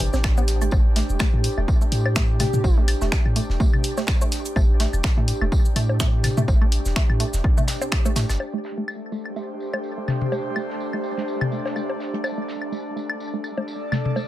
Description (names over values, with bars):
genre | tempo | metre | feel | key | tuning
minimal techno | 125 BPM | 4/4 | swing 56% on 16ths | A minor | A4 = 442 Hz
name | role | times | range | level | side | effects
hollow square pluck | riff | 0.0-14.2 s | E3 to C4 | -31 LUFS | right 3 dB | chorus, phaser, cassette tape, sidechain pumping, tape echo
punchy sub bass | bass | 0.0-8.4 s | E1 to A2 | -22 LUFS | equal | tube saturation, sidechain pumping
punchy analog drum machine | drums | 0.0-8.4 s | cabasa, finger snaps, hi-hat | -28 LUFS | equal | low-pass filter on hats, low-pass filter on perc, low-pass filter on snare, low-pass filter on room
tight funk drum kit | drums | 0.0-14.3 s | hi-hat, snare drum, tambourine | -38 LUFS | right 1 dB | high-pass filter on hats, low-pass filter on hats, high-pass filter on snare, low-pass filter on snare, high-pass filter on perc, low-pass filter on perc, high-pass filter on room, low-pass filter on room
airy breathy pad | texture | 0.0-14.3 s | A3 to D5 | -29 LUFS | right 1 dB | chorus, sidechain pumping
electronic bongos, claves and toms | percussion | 0.1-14.3 s | none | -28 LUFS | left 3 dB | tape echo
electronic kick drum | drums | 0.2-8.0 s | none | -20 LUFS | equal | none
airy dreamy lead | melody | 2.4-2.8 s | G4 | -29 LUFS | equal | chorus, tape echo
room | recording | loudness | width
light reverb | none | -20 LUFS | side -14 dB against mid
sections
0.0-8.4 A section; 8.4-14.3 B section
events
filter sweep on synth arpeggio sound 0.0-8.4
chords
0.0 Am